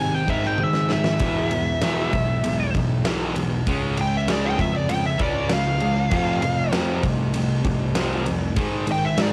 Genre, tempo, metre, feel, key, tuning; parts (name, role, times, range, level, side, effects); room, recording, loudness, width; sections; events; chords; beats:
quiet-loud alternative rock; 98 BPM; 4/4; straight; A4 = 439 Hz
smooth overdriven lead guitar; melody; 0.0-9.3 s; D5 to G#5; -28 LUFS; equal
twelve-string electric guitar; arpeggios; 0.0-1.2 s; G#2 to D#4; -34 LUFS; equal
thick fuzz guitar; riff; 0.0-9.3 s; E2 to C#4; -27 LUFS; equal; distortion
fuzz fingered electric bass; bass; 0.0-9.3 s; B1 to B#2; -30 LUFS; equal; overdrive
huge arena drum kit; drums; 0.3-9.3 s; kick drum, ride cymbal, snare drum, toms; -29 LUFS; equal; cassette tape
raw garage guitar; riff; 1.2-9.3 s; G#2 to C#4; -33 LUFS; equal; overdrive
light reverb; home recording on cassette; -22 LUFS; mono
0.0-9.3 A section
lead electric guitar solo 0.0-9.3; drum fill 0.6-1.2
0.0 G#; 1.2 E; 3.7 C#; 6.1 F; 8.6 G#5
0.60 | 1.22 1.83 2.45 3.06 | 3.68 4.29 4.91 5.52 | 6.13 6.75 7.36 7.97 | 8.58 9.19